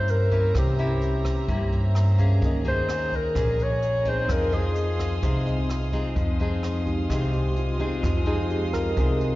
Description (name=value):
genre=bossa nova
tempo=128 BPM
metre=4/4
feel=straight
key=F minor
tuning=A4 = 440 Hz
part: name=dark clarinet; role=melody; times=0.0-5.5 s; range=G4 to Db5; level=-27 LUFS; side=left 1 dB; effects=slapback echo
part: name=nylon-string guitar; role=accompaniment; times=0.0-9.4 s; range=Bb2 to Ab4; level=-31 LUFS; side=left 3 dB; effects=slapback echo
part: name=tine electric piano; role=accompaniment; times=0.0-9.4 s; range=Ab3 to Bb5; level=-32 LUFS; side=right 2 dB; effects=medium stereo tremolo, slapback echo
part: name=dark studio string section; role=sustained chords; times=0.0-9.4 s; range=Ab3 to Eb6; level=-36 LUFS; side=equal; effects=none
part: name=upright bass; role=bass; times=0.0-9.4 s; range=Bb1 to G2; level=-24 LUFS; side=equal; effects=none
part: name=jazz brush drum kit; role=drums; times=0.1-9.3 s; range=hi-hat, kick drum, rim click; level=-30 LUFS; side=equal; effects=none
room=small room ambience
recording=live gig heard through the venue's PA, recital hall reverb, nothing above 7.5 kHz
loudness=-22 LUFS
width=side -17 dB against mid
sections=0.0-6.2 A section; 6.2-9.4 B section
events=tine electric piano fill 1.7-2.4; tine electric piano solo 6.2-9.4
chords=0.0 C7b9; 2.4 Eb7sus4; 4.3 Fm7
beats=0.07 | 0.54 1.01 1.48 1.95 | 2.41 2.88 3.35 3.82 | 4.29 4.76 5.22 5.69 | 6.16 6.63 7.10 7.57 | 8.03 8.50 8.97